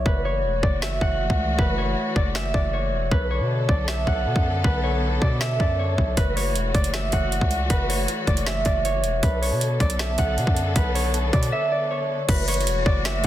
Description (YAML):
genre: hip hop, trap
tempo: 157 BPM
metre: 4/4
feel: half-time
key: F# minor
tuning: A4 = 438 Hz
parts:
  - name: concert harp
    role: melody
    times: 0.0-13.3 s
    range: B4 to F#5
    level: -25 LUFS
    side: right 1 dB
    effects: low-pass filter, tape echo
  - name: distorted 808-style bass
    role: bass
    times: 0.0-13.3 s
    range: E1 to B2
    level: -25 LUFS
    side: equal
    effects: distortion
  - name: dark symphonic string section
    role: sustained chords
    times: 0.1-13.3 s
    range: D3 to A4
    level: -30 LUFS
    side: left 2 dB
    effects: none
  - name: trap drum kit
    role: drums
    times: 0.1-13.3 s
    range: crash cymbal, finger snaps, hi-hat, kick drum, snare drum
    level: -24 LUFS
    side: equal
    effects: none
room: light reverb, digital ambience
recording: dense, heavily limited modern master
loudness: -20 LUFS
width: side -12 dB against mid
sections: 0.0-12.3 A section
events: break 0.1-6.2, 11.5-12.3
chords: 0.1 F#m7; 3.1 Bm7; 6.2 F#m7; 9.2 Bm7; 12.3 F#m7